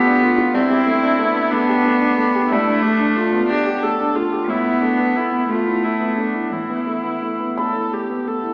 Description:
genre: neoclassical piano and strings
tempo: 60 BPM (dotted quarters)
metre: 6/8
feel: uneven beats, rubato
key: unclear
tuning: A4 = 442 Hz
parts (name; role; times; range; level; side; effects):
- warm cello; second line; 0.0-8.3 s; E3 to D4; -21 LUFS; equal; none
- felt-muted upright piano; accompaniment; 0.0-8.5 s; D2 to B5; -25 LUFS; equal; none
- warm viola; accompaniment; 0.0-8.5 s; D4 to A4; -24 LUFS; equal; none
room: wet recital hall reverb, RT60 1.5 s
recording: heard from further back in the room, AM radio sound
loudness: -19 LUFS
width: mono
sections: 0.0-8.5 A section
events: none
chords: 0.0 Dm; 0.6 Gsus2; 4.5 Asus2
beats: | 0.56 1.53 | 2.51 3.50 | 4.49 5.49 | 6.52 7.59

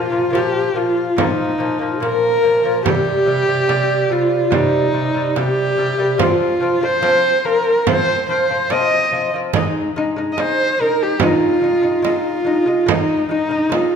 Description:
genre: mongolian traditional, Mongolian folk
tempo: 72 BPM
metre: 4/4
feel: straight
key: Bb zhi mode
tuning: A4 = 440 Hz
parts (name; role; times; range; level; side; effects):
- rich horsehead fiddle; melody; 0.0-14.0 s; Eb4 to Eb5; -18 LUFS; equal; none
- mellow hollow low xiao; second line; 0.0-14.0 s; C4 to F5; -23 LUFS; right 2 dB; none
- lute; arpeggios; 0.0-14.0 s; Bb2 to Eb4; -20 LUFS; left 1 dB; none
- frame drum; percussion; 0.4-13.9 s; none; -23 LUFS; right 6 dB; none
room: moderate scoring stage reverb, RT60 1.9 s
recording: none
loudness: -14 LUFS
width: side -7 dB against mid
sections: 0.0-14.0 A section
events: none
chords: 0.0 Bb5; 2.9 C5; 6.2 F5; 9.5 Ab5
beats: 0.35 1.18 2.02 | 2.86 3.69 4.53 5.36 | 6.20 7.04 7.87 8.71 | 9.54 10.38 11.21 12.05 | 12.88 13.72

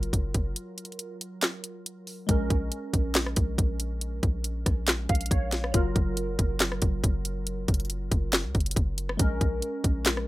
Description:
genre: hip hop, trap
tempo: 139 BPM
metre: 4/4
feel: half-time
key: Bb minor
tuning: A4 = 440 Hz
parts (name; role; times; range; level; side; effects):
- glassy digital keys; accompaniment; 0.0-10.3 s; Gb3 to F5; -34 LUFS; equal; chorus, low-pass filter
- warm 808-style bass; bass; 0.0-10.3 s; Gb1 to Db2; -30 LUFS; equal; none
- trap drum kit; drums; 0.0-10.3 s; handclaps, hi-hat, kick drum, rim click, snare drum; -26 LUFS; equal; overdrive
room: little or no reverb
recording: rough home demo mix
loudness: -25 LUFS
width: side -18 dB against mid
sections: 0.0-2.3 A section; 2.3-10.3 B section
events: break 0.6-2.3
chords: 0.0 Gbmaj7; 2.3 Bbm7; 5.7 Gbmaj7; 9.2 Bbm7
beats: 0.13 | 0.56 0.99 1.43 1.86 | 2.29 2.72 3.15 3.58 | 4.01 4.45 4.88 5.31 | 5.74 6.17 6.60 7.04 | 7.47 7.90 8.33 8.76 | 9.19 9.63 10.06

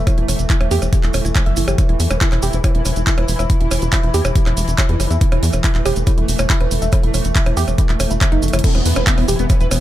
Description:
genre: psychedelic trance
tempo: 140 BPM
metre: 4/4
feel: straight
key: unclear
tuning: A4 = 443 Hz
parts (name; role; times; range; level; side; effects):
- pulsing gated texture; sustained chords; 0.0-9.8 s; E3 to E4; -25 LUFS; equal; chorus, built-in reverb, sidechain pumping
- woody wave-folded pluck; riff; 0.0-9.7 s; D#4 to E5; -25 LUFS; moving between equal and right 6 dB; chorus, auto-pan, sidechain pumping, ping-pong delay
- tight sequencer bass; bass; 0.0-9.8 s; E1 to E2; -18 LUFS; equal; tube saturation
- electronic kick drum; drums; 0.1-9.6 s; none; -15 LUFS; equal; overdrive
- techno drum kit; drums; 0.1-9.8 s; crash cymbal, handclaps, hi-hat, percussion blips; -23 LUFS; right 1 dB; none
- cabasa; percussion; 0.1-9.8 s; none; -29 LUFS; right 3 dB; none
- vowel-sweep wobble bass; second line; 2.1-5.1, 9.0-9.6 s; B3 to E4; -35 LUFS; left 3 dB; none
- wide unison lead; melody; 8.6-9.8 s; B3 to B4; -24 LUFS; left 1 dB; phaser, sidechain pumping, ping-pong delay
- downlifter; sound effects; 8.6-9.8 s; none; -25 LUFS; right 2 dB; none
room: little or no reverb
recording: none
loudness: -14 LUFS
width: side -14 dB against mid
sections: 0.0-8.6 A section; 8.6-9.8 B section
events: drum fill 8.4; drop 8.6-9.8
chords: 0.0 E5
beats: | 0.07 0.50 0.93 1.35 | 1.78 2.21 2.64 3.07 | 3.50 3.93 4.36 4.78 | 5.21 5.64 6.07 6.50 | 6.93 7.36 7.78 8.21 | 8.64 9.07 9.50

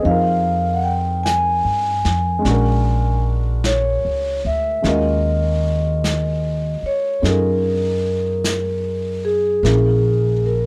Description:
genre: jazz ballad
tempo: 50 BPM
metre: 4/4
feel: swing 66% on 8ths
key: Eb minor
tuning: A4 = 440 Hz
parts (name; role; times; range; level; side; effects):
- vibraphone with soft mallets; melody; 0.0-10.7 s; Ab4 to Ab5; -22 LUFS; equal; none
- warm baby grand piano; accompaniment; 0.0-10.7 s; Ab3 to Bb4; -28 LUFS; equal; none
- upright bass; bass; 0.0-10.7 s; Bb1 to G2; -22 LUFS; equal; none
- vintage brush drum kit; drums; 0.1-10.7 s; brushed snare drum, hi-hat, snare drum; -31 LUFS; equal; none
room: little or no reverb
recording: dark, warm production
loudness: -19 LUFS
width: mono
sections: 0.0-10.7 A section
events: none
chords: 0.0 Fm11; 2.4 Bb7alt; 4.8 Ebm11; 9.6 Bbm7b5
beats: | 0.03 1.23 2.43 3.63 | 4.83 6.03 7.23 8.43 | 9.63

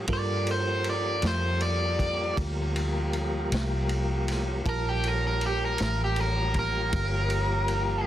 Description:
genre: slow blues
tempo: 53 BPM (dotted quarters)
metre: 12/8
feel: straight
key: G minor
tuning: A4 = 441 Hz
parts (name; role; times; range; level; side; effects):
- bell-like tine electric piano; accompaniment; 0.0-8.1 s; F4 to A5; -37 LUFS; right 6 dB; plate reverb
- tonewheel organ; sustained chords; 0.0-8.1 s; F3 to Bb3; -34 LUFS; left 1 dB; slow rotary speaker
- vintage muted fingered electric bass; bass; 0.0-8.0 s; G1 to G2; -29 LUFS; equal; none
- biting overdriven guitar; melody; 0.1-8.1 s; G4 to D5; -29 LUFS; equal; none
- vintage drum kit; drums; 0.1-7.9 s; kick drum, ride cymbal, snare drum; -33 LUFS; equal; none
room: light reverb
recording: dense, heavily limited modern master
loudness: -25 LUFS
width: side -12 dB against mid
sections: 0.0-8.1 A section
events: overdriven electric guitar solo 0.0-8.1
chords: 0.0 Gm9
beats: | 0.10 1.24 2.38 3.52 | 4.66 5.80 6.94

